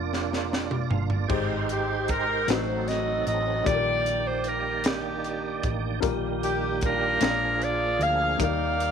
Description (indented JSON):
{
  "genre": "slow gospel",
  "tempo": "51 BPM (dotted quarters)",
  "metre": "6/8",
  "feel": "straight",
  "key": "Eb major",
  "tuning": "A4 = 440 Hz",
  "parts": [
    { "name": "warm grand piano", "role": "accompaniment", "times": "0.0-8.9 s", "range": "Ab2 to D5", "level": "-33 LUFS", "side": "left 13 dB", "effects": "none" },
    { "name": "tonewheel organ", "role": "sustained chords", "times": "0.0-8.9 s", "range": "Eb3 to F5", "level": "-31 LUFS", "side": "right 11 dB", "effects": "slow rotary speaker, chorus vibrato" },
    { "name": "hollow-body short-scale fingered electric bass", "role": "bass", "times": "0.0-8.9 s", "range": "F1 to Eb2", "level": "-32 LUFS", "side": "equal", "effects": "none" },
    { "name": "crisp fusion drum kit", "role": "drums", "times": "0.1-8.9 s", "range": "crash cymbal, hi-hat, kick drum, snare drum, toms", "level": "-29 LUFS", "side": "equal", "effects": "none" },
    { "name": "clear saxophone section", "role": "melody", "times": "1.7-8.9 s", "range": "D4 to F5", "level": "-26 LUFS", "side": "equal", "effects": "none" }
  ],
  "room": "light reverb, studio reverb",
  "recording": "1960s-style stereo with parts hard left and right",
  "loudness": "-23 LUFS",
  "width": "side -7 dB against mid",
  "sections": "0.0-1.3 A section; 1.3-8.9 B section",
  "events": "drum fill 0.1-1.3",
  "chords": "0.0 Bb; 1.3 Abmaj7; 2.5 Adim7; 3.7 Ebmaj7/Bb; 6.0 Eb/Bb; 7.2 Bb7; 8.4 Ebmaj7"
}